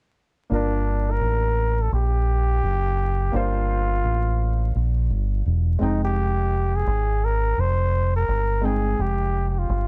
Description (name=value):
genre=hip hop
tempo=85 BPM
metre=4/4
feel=swing 62% on 16ths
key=G phrygian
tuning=A4 = 441 Hz
part: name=trumpet with bucket mute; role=melody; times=0.5-9.9 s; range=D4 to C5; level=-28 LUFS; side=equal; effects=none
part: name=warm grand piano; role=accompaniment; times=0.5-9.9 s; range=Ab3 to G5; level=-33 LUFS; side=equal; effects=none
part: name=deep dub fingered electric bass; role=bass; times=0.5-9.9 s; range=E1 to Bb1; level=-24 LUFS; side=equal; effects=none
room=small room reverb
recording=vinyl crackle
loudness=-23 LUFS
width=mono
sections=0.5-9.9 A section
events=none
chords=0.5 Gm9; 5.8 Fm9